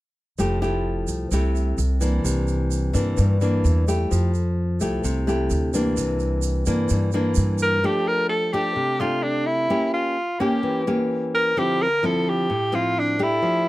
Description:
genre	bossa nova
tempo	129 BPM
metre	4/4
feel	straight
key	F major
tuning	A4 = 440 Hz
part	nylon-string guitar	accompaniment	0.4-13.7 s	G2 to G4	-23 LUFS	left 1 dB	none
part	upright bass	bass	0.4-7.8 s	F1 to G2	-22 LUFS	equal	none
part	tube shaker	percussion	0.4-7.8 s	none	-36 LUFS	right 9 dB	none
part	breathy alto saxophone	melody	7.6-13.7 s	D4 to Bb4	-21 LUFS	equal	none
room	light reverb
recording	close, detailed microphones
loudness	-20 LUFS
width	side -17 dB against mid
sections	0.4-7.8 A section; 7.8-13.7 B section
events	none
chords	0.4 Fmaj9; 2.2 C9; 4.1 Fmaj9; 6.0 C9; 7.8 F69; 9.7 Edim7; 11.6 Dm9

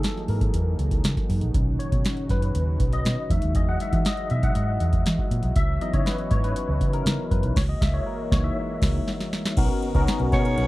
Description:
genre	polished 1980s jazz-funk pop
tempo	120 BPM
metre	4/4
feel	straight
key	B major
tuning	A4 = 442 Hz
part	tine electric piano	accompaniment	0.0-10.7 s	A#2 to F#5	-28 LUFS	left 2 dB	ensemble chorus
part	warm analog pad	sustained chords	0.0-10.7 s	C#3 to A#4	-34 LUFS	right 2 dB	chorus
part	booming analog drum machine	drums	0.0-10.7 s	crash cymbal, hi-hat, kick drum, ride cymbal, snare drum	-25 LUFS	equal	none
part	vintage muted fingered electric bass	bass	0.3-10.7 s	A#1 to E3	-24 LUFS	equal	none
part	growling alto saxophone	melody	10.3-10.7 s	C#5	-26 LUFS	right 1 dB	none
room	little or no reverb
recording	dry, close 1970s-style studio recording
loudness	-21 LUFS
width	side -18 dB against mid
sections	0.0-9.6 A section; 9.6-10.7 B section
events	tine electric piano solo 0.0-9.6; band accent 7.6-9.6; drum fill 9.1-9.6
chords	0.0 F#13; 1.5 Bmaj9; 3.3 Emaj9; 5.6 C#m11; 7.6 F#13/C#; 9.6 Bmaj9

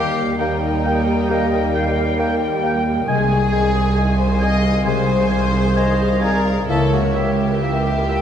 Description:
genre	classical, slow romantic movement for symphony orchestra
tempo	64-69 BPM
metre	4/4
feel	rubato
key	unclear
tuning	A4 = 440 Hz
part	warm chamber violin section	melody	0.0-8.2 s	E5 to Ab5	-29 LUFS	left 5 dB	none
part	clear oboe	second line	0.0-8.2 s	E5 to Ab5	-29 LUFS	equal	none
part	silver concert flute	second line	0.0-8.2 s	C#5 to Ab5	-27 LUFS	left 2 dB	none
part	warm symphonic violin section	second line	0.0-8.2 s	Eb4 to Eb5	-24 LUFS	left 3 dB	none
part	dark symphonic viola section	accompaniment	0.0-8.2 s	Eb3 to Bb4	-25 LUFS	right 2 dB	none
part	warm bassoon	accompaniment	0.0-8.2 s	Ab3 to A#3	-29 LUFS	equal	none
part	concert harp	arpeggios	0.0-8.2 s	C3 to Ab5	-26 LUFS	left 8 dB	none
part	warm symphonic cello section	bass	0.0-8.2 s	C2 to Eb2	-21 LUFS	right 2 dB	none
part	warm symphonic double bass section	bass	0.0-8.2 s	C2 to Eb2	-23 LUFS	right 3 dB	none
part	warm French horn section	sustained chords	1.3-7.0 s	Ab3 to Ab4	-28 LUFS	left 3 dB	none
room	wet concert hall reverb, RT60 1.7 s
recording	dark, warm production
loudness	-16 LUFS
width	side -9 dB against mid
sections	0.0-8.2 A section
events	none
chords	0.0 Eb; 3.1 Ab/C; 6.7 C#dim7

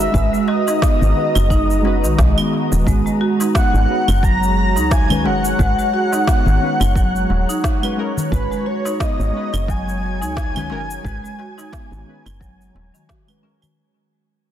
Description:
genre	organic downtempo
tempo	88 BPM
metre	4/4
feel	swing 56% on 16ths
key	G# minor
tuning	A4 = 440 Hz
part	breathy flute-like synth lead	melody	0.0-13.1 s	B4 to A#5	-22 LUFS	equal	ensemble chorus, digital delay, shimmer reverb
part	deep mellow chord stab	accompaniment	0.0-13.8 s	G#3 to B4	-27 LUFS	left 3 dB	chorus, sidechain pumping, digital delay, shimmer reverb
part	warm analog pad	sustained chords	0.0-13.8 s	G#3 to A#5	-26 LUFS	right 3 dB	chorus, sidechain pumping, shimmer reverb
part	woody FM bass	bass	0.0-12.9 s	D#1 to C#2	-19 LUFS	equal	none
part	electronic shaker, snare drum and claves	drums	0.0-13.7 s	none	-26 LUFS	right 1 dB	overdrive
part	marimba with medium mallets	arpeggios	0.1-13.8 s	D#3 to F#4	-23 LUFS	right 2 dB	digital delay, shimmer reverb
part	electronic kick drum	drums	0.1-13.2 s	none	-20 LUFS	equal	overdrive
part	darbuka	percussion	0.5-13.7 s	none	-27 LUFS	left 3 dB	none
room	light reverb, digital ambience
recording	dense, heavily limited modern master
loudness	-15 LUFS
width	side -11 dB against mid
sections	0.0-13.8 A section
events	fade-out 6.5-13.8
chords	0.0 G#m7

